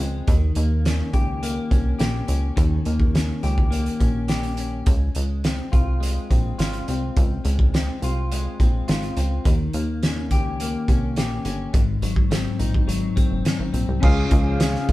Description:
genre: indie pop, bedroom pop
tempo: 105 BPM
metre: 4/4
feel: straight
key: Db lydian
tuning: A4 = 440 Hz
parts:
  - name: clean electric guitar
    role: accompaniment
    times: 0.0-14.9 s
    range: Ab2 to G4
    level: -27 LUFS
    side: left 3 dB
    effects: vibrato effect
  - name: plucky analog bass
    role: bass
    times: 0.0-14.9 s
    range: Gb1 to Eb2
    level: -24 LUFS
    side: equal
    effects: none
  - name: loose indie drum kit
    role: drums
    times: 0.3-14.9 s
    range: crash cymbal, hi-hat, kick drum, snare drum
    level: -21 LUFS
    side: equal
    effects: none
  - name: barky tine electric piano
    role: accompaniment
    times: 14.0-14.9 s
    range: Db4 to F5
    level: -26 LUFS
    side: right 1 dB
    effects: overdrive
  - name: warm analog pad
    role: sustained chords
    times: 14.0-14.9 s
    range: Db4 to F5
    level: -30 LUFS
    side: left 1 dB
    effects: chorus
room: moderate studio reverb, RT60 0.7 s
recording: band playing live in one room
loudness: -19 LUFS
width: side -17 dB against mid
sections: 0.0-14.0 A section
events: none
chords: 0.3 Eb7; 4.9 Dbmaj7; 9.5 Eb7; 11.7 Ab7; 14.0 Db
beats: | 0.28 0.85 1.43 2.00 | 2.57 3.15 3.72 4.29 | 4.87 5.44 6.01 6.59 | 7.16 7.73 8.31 8.88 | 9.45 10.02 10.60 11.17 | 11.74 12.31 12.89 13.46 | 14.03 14.60

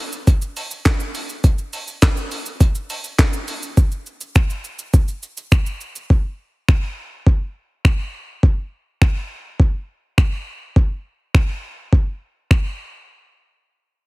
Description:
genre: pop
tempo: 103 BPM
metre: 4/4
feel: straight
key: none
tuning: none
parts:
  - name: jungle sampler-style drum kit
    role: drums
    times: 0.1-12.6 s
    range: finger snaps, handclaps, hi-hat, kick drum, shaker, snare drum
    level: -15 LUFS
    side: equal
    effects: none
room: little or no reverb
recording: heavily compressed radio sound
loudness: -17 LUFS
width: side -24 dB against mid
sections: 0.0-3.8 A section; 3.8-13.1 B section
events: none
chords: none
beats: 0.28 0.86 | 1.44 2.02 2.60 3.19 | 3.77 4.35 4.93 5.52 | 6.10 6.68 7.27 7.85 | 8.43 9.01 9.60 10.18 | 10.76 11.34 11.93 12.51

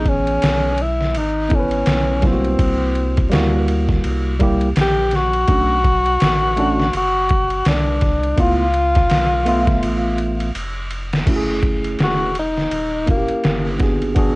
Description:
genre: hip hop, jazz-hop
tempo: 83 BPM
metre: 4/4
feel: swing 59% on 16ths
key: unclear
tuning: A4 = 440 Hz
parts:
  - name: breathy tenor saxophone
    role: melody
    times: 0.0-13.8 s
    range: A#3 to G4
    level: -19 LUFS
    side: left 1 dB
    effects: none
  - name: tine electric piano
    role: accompaniment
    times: 0.0-14.4 s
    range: E3 to E5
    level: -20 LUFS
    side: right 1 dB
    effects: medium stereo tremolo
  - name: warm sub bass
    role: bass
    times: 0.0-14.4 s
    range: D#1 to D2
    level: -22 LUFS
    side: equal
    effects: none
  - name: trip hop sampler-style drum kit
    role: drums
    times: 0.1-14.4 s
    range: crash cymbal, hi-hat, kick drum, ride cymbal, snare drum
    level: -20 LUFS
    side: equal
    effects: none
room: light reverb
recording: worn, warbling old tape, cassette tape, vinyl crackle, warbly pitch drift, nothing above 10.3 kHz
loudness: -15 LUFS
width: side -23 dB against mid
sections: 0.0-11.3 A section; 11.3-14.4 B section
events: drum fill 9.8-11.3; tenor saxophone solo 11.3-14.4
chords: 0.0 Amaj9; 2.6 C7#11; 5.5 Bm7; 8.4 C#7alt; 11.3 F#m9; 12.7 D#7b9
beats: 0.42 1.15 1.87 | 2.59 3.32 4.04 4.76 | 5.49 6.21 6.93 7.65 | 8.38 9.10 9.82 10.54 | 11.27 11.99 12.71 13.44 | 14.16

